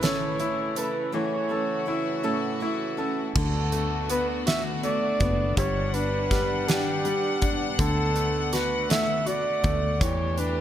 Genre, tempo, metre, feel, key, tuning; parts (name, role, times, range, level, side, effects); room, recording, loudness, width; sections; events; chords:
six-eight pop ballad; 54 BPM (dotted quarters); 6/8; straight; D major; A4 = 440 Hz
mellow flugelhorn; melody; 0.0-10.6 s; G4 to E5; -28 LUFS; right 2 dB; digital delay
bright concert grand piano; accompaniment; 0.0-10.6 s; D3 to A4; -30 LUFS; left 4 dB
rich studio string section; sustained chords; 0.0-10.6 s; C#3 to F#5; -32 LUFS; equal
picked steel-string acoustic guitar; arpeggios; 0.0-3.4 s; A2 to A4; -32 LUFS; right 5 dB
fingered electric bass; bass; 0.0-10.6 s; F#1 to E2; -29 LUFS; equal
huge arena drum kit; drums; 0.0-10.6 s; crash cymbal, hi-hat, kick drum, snare drum; -29 LUFS; equal
light reverb, studio reverb; -23 LUFS; side -10 dB against mid
0.0-3.4 A section; 3.4-10.6 B section
0.0 A; 3.4 D6; 5.6 Gmaj7; 7.8 D6; 10.0 A7sus4/E